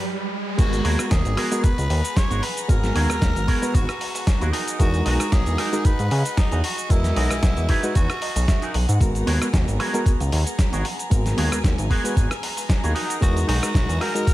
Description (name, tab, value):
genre	nu-disco, nu disco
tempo	114 BPM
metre	4/4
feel	swing 54% on 16ths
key	G# minor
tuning	A4 = 438 Hz
part	breathy tenor saxophone	melody	0.0-8.7, 13.2-14.3 s	D#4 to C#5	-30 LUFS	equal	dub echo
part	warm symphonic violin section	sustained chords	0.0-14.3 s	B3 to A#5	-34 LUFS	equal	sidechain pumping
part	riser	sound effects	0.0-0.6 s	none	-29 LUFS	right 3 dB	none
part	barky reed electric piano	accompaniment	0.6-14.3 s	G#3 to D#5	-28 LUFS	equal	overdrive, fast tremolo, digital delay
part	fat analog bass	bass	0.6-14.3 s	G#1 to C#3	-22 LUFS	equal	sidechain pumping, high-pass filter
part	dusty soul sampler-style drum kit	drums	0.6-14.3 s	crash cymbal, hi-hat, rim click, shaker, snare drum	-28 LUFS	equal	high-pass filter on hats, studio reverb, high-pass filter on snare, high-pass filter on cymbals, high-pass filter on perc
part	electronic kick drum	drums	0.6-14.3 s	none	-19 LUFS	equal	studio reverb
part	electric guitar with an envelope filter	riff	0.8-14.3 s	B3 to F#5	-29 LUFS	right 2 dB	analog chorus, digital delay
room	little or no reverb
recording	none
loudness	-19 LUFS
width	side -16 dB against mid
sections	0.6-14.3 A section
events	riser 0.0-0.6; break 0.1-0.6; drop 0.6-14.3; clean electric guitar fill 8.0-9.0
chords	0.0 N.C.; 0.6 G#m9; 4.5 Emaj9#11; 9.0 G#m9; 13.0 Emaj9#11